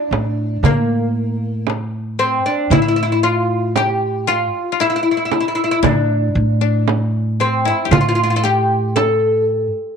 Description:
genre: Arabic maqam ensemble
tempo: 115 BPM (eighths)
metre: 10/8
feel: straight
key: A maqam kurd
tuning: A4 = 440 Hz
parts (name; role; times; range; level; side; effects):
- oud; melody; 0.0-9.4 s; Bb3 to A4; -17 LUFS; left 1 dB; none
- koto; second line; 0.0-10.0 s; Bb3 to A4; -24 LUFS; left 9 dB; none
- upright bass; bass; 0.1-9.7 s; A2; -20 LUFS; right 1 dB; none
- darbuka; percussion; 0.1-9.6 s; none; -22 LUFS; left 5 dB; none
- frame drum; percussion; 0.1-9.2 s; none; -19 LUFS; right 11 dB; none
room: light reverb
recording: 1960s-style stereo with parts hard left and right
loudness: -15 LUFS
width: side -7 dB against mid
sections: 0.0-10.0 A section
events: none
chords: none

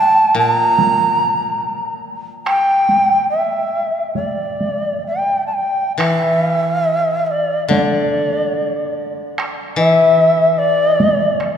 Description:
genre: japanese traditional, Japanese chamber music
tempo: 62-74 BPM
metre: 4/4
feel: rubato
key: unclear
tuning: A4 = 439 Hz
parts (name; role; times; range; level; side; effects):
- long shakuhachi; melody; 0.0-11.4 s; D5 to Bb5; -15 LUFS; equal; none
- koto; accompaniment; 0.3-11.6 s; Bb2 to E3; -21 LUFS; left 1 dB; none
- taiko ensemble; percussion; 0.8-11.6 s; none; -24 LUFS; right 2 dB; none
room: wet church reverb, RT60 3.7 s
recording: recorded in a church or concert hall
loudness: -14 LUFS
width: side -8 dB against mid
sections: 0.0-6.0 A section; 6.0-11.6 B section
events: none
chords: none

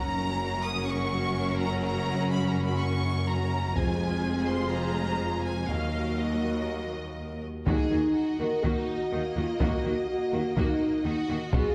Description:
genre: cinematic, epic orchestral film score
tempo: 124 BPM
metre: 4/4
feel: straight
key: Eb minor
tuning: A4 = 440 Hz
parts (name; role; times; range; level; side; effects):
- warm symphonic violin section; melody; 0.0-11.7 s; Eb5 to Eb6; -37 LUFS; equal; none
- rich symphonic violin section; second line; 0.0-11.7 s; Bb3 to Eb5; -41 LUFS; equal; none
- clear symphonic viola section; accompaniment; 0.0-11.7 s; Gb3 to Gb4; -39 LUFS; equal; none
- dark French horn section; sustained chords; 0.0-11.7 s; Gb3 to Bb4; -34 LUFS; equal; none
- rich symphonic cello section; bass; 0.0-11.6 s; Eb2 to Eb3; -36 LUFS; equal; none
- rich symphonic double bass section; bass; 0.0-11.6 s; F1 to Eb2; -35 LUFS; equal; none
- taiko ensemble; drums; 3.8-4.7, 7.7-11.7 s; none; -32 LUFS; equal; none
- mellow tuba; bass; 7.7-11.6 s; B1 to Eb2; -38 LUFS; equal; none
room: moderate scoring stage reverb, RT60 2.0 s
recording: none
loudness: -28 LUFS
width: mono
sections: 0.0-7.7 A section; 7.7-11.7 A section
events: none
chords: 0.0 Gb; 3.8 Fm; 5.7 Ebm

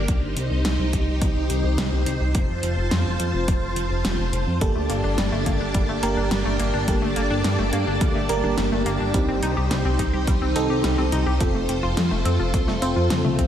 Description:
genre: synthwave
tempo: 106 BPM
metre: 4/4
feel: straight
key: G minor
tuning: A4 = 439 Hz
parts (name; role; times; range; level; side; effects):
- string machine, full ensemble; sustained chords; 0.0-13.5 s; Bb3 to A5; -26 LUFS; equal; ensemble chorus, sidechain pumping
- chorused synth bass; bass; 0.0-13.5 s; F1 to G2; -24 LUFS; equal; sidechain pumping
- electronic kick drum; drums; 0.1-13.5 s; none; -23 LUFS; equal; overdrive
- pop drum kit; drums; 0.1-13.5 s; hi-hat, snare drum, toms; -29 LUFS; equal; overdrive, slapback echo
- analog pluck; arpeggios; 4.6-13.4 s; F3 to G4; -29 LUFS; left 2 dB; chorus, cassette tape, digital delay, slapback echo
- FM electric piano with soft pad layer; stabs; 4.6-13.5 s; Bb3 to C5; -27 LUFS; right 3 dB; chorus, digital delay, slapback echo
room: moderate concert hall reverb, RT60 2.0 s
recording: big arena sound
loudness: -20 LUFS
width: side -10 dB against mid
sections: 0.0-13.5 A section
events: drum fill 13.1-13.5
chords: 0.1 Cm; 2.3 F; 4.6 Gmadd9; 9.1 Cm; 11.4 F

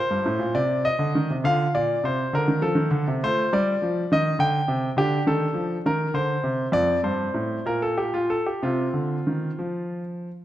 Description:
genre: classical, baroque-style suite movement for grand piano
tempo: 62-69 BPM (dotted quarters)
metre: 6/8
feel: rubato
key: Bb major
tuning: A4 = 439 Hz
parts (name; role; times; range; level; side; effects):
- bright concert grand piano; solo; 0.0-10.3 s; F2 to G5; -21 LUFS; equal; none
room: moderate concert hall reverb, RT60 1.7 s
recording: close, detailed microphones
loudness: -21 LUFS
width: side -13 dB against mid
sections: 0.0-10.4 A section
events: none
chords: 0.0 Bb5; 0.5 Cm; 1.4 Bb; 3.2 F; 4.1 Eb; 5.0 Dm; 5.8 Cm; 6.7 F; 7.7 N.C.; 8.6 F5/C; 9.6 N.C.

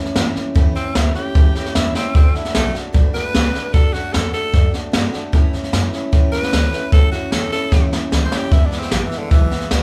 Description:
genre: rockabilly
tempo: 151 BPM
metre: 4/4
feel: straight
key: A major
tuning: A4 = 440 Hz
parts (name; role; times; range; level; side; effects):
- picked steel-string acoustic guitar; accompaniment; 0.0-9.8 s; E2 to F#4; -28 LUFS; equal; none
- jazz brush drum kit; drums; 0.1-9.8 s; hi-hat, kick drum, snare drum; -18 LUFS; equal; none
- upright bass; bass; 0.2-9.8 s; A1 to A2; -24 LUFS; equal; none
- raspy tenor saxophone; melody; 0.8-9.7 s; D3 to C5; -26 LUFS; equal; none
room: moderate large studio reverb, RT60 0.9 s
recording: band playing live in one room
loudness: -17 LUFS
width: mono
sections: 0.0-9.8 A section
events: tenor saxophone solo 0.0-9.8; drum fill 1.9, 7.7-8.5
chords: 0.0 A; 2.1 D; 5.3 A; 8.5 E

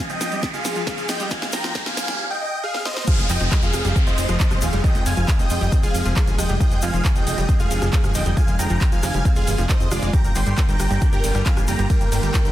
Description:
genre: uplifting trance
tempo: 136 BPM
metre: 4/4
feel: straight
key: F dorian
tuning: A4 = 439 Hz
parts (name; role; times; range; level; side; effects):
- big supersaw lead; melody; 0.0-12.5 s; F4 to C6; -26 LUFS; equal; cassette tape, sidechain pumping, dub echo
- lush unison pad; sustained chords; 0.2-12.5 s; D3 to Ab4; -32 LUFS; right 1 dB; chorus, sidechain pumping
- analog pluck; arpeggios; 0.0-12.5 s; Eb3 to G4; -30 LUFS; right 2 dB; chorus, sidechain pumping, dub echo
- riser and downlifter; sound effects; 0.0-6.6 s; none; -30 LUFS; right 1 dB; none
- techno drum kit; drums; 0.1-12.5 s; crash cymbal, handclaps, hi-hat, ride cymbal, rim click, snare drum; -29 LUFS; equal; none
- egg shaker; percussion; 0.1-12.5 s; none; -34 LUFS; left 3 dB; none
- electronic kick drum; drums; 0.4-12.4 s; none; -20 LUFS; equal; none
- fat analog bass; bass; 3.2-12.5 s; Eb1 to F2; -22 LUFS; equal; sidechain pumping
room: light reverb, digital ambience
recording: dense, heavily limited modern master, high-pass filter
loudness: -18 LUFS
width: side -14 dB against mid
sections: 0.0-3.1 A section; 3.1-12.5 B section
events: build-up 0.0-3.1; drum fill 0.0-2.2, 2.7-3.1; riser 0.0-2.2; drop 3.1-12.5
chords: 0.0 Fmadd9; 10.1 Gm7

